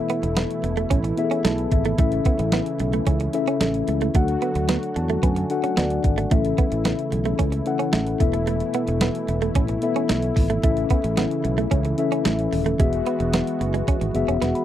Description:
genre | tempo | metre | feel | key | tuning
1980s-style pop | 111 BPM | 4/4 | straight | A major | A4 = 440 Hz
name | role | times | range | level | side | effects
mellow tine electric piano | accompaniment | 0.0-14.6 s | B3 to B5 | -24 LUFS | left 5 dB | slow stereo tremolo
brassy analog pad | sustained chords | 0.0-14.6 s | B2 to F#4 | -29 LUFS | right 3 dB | chorus
direct-recorded clean electric guitar | riff | 0.1-14.5 s | G#3 to C#4 | -28 LUFS | right 8 dB | analog chorus, tape echo
clean 12-bit digital drum machine | drums | 0.1-14.6 s | hi-hat, kick drum, snare drum | -22 LUFS | right 1 dB | none
fretless electric bass | bass | 0.2-14.5 s | D#1 to F#2 | -25 LUFS | equal | none
room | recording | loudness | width
light reverb | dry, close 1970s-style studio recording | -19 LUFS | side -11 dB against mid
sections
0.0-14.6 A section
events
tine electric piano fill 1.2-2.0, 4.7-6.3; drum fill 14.4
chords
0.0 Esus4; 2.0 A; 4.2 D; 6.3 A; 8.2 Esus4; 10.6 A; 12.8 Eadd9

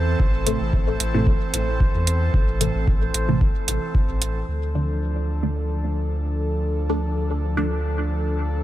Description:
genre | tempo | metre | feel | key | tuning
dub techno | 112 BPM | 4/4 | swing 53% on 16ths | D minor | A4 = 439 Hz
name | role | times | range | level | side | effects
airy breathy pad | sustained chords | 0.0-8.6 s | E3 to A4 | -29 LUFS | equal | chorus, sidechain pumping
warm sub bass | bass | 0.0-8.6 s | A1 to E2 | -24 LUFS | equal | sidechain pumping
drifting glass-harmonics texture | texture | 0.0-8.6 s | A4 to C5 | -32 LUFS | equal | chorus, built-in reverb, sidechain pumping
electronic kick drum | drums | 0.2-4.1 s | none | -21 LUFS | equal | overdrive
filtered dub chord stab | stabs | 0.5-7.7 s | A2 to D4 | -27 LUFS | equal | phaser, dub echo
electronic hi-hat | drums | 0.5-4.3 s | none | -23 LUFS | right 4 dB | overdrive
room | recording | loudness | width
little or no reverb | none | -20 LUFS | side -14 dB against mid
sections
0.0-4.5 A section; 4.5-8.6 B section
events
filter sweep on synth stab 0.0-4.5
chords
0.0 Am; 4.5 Dm

